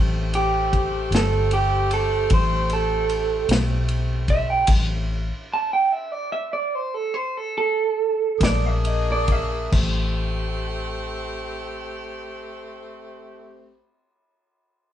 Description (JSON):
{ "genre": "slow blues", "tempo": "45-51 BPM (dotted quarters)", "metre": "12/8", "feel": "straight", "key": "A minor", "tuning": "A4 = 437 Hz", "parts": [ { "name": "warm saxophone section", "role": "sustained chords", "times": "0.0-13.8 s", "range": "A3 to Ab4", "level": "-31 LUFS", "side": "equal", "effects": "none" }, { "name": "vintage muted fingered electric bass", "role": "bass", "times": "0.0-13.8 s", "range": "G1 to B1", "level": "-24 LUFS", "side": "left 1 dB", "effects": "none" }, { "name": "vintage drum kit", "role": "drums", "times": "0.3-9.9 s", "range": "crash cymbal, kick drum, ride cymbal, snare drum", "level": "-24 LUFS", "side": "left 1 dB", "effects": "none" }, { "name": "electric guitar through a small old amp", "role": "melody", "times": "0.4-9.7 s", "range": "G4 to A5", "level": "-22 LUFS", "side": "right 4 dB", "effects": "none" } ], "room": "moderate studio reverb, RT60 0.8 s", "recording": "band playing live in one room, nothing above 10.4 kHz", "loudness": "-20 LUFS", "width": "side -10 dB against mid", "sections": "0.0-9.7 A section; 9.7-14.9 B section", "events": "clean electric guitar solo 0.0-9.7; slowing down 3.1-9.7; stop 4.7-8.4", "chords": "0.0 Am7; 8.4 Bb7; 9.7 Am7", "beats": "1.13 2.31 3.50 | 4.69 5.90 7.13 8.40 | 9.72 11.06 12.40 13.74" }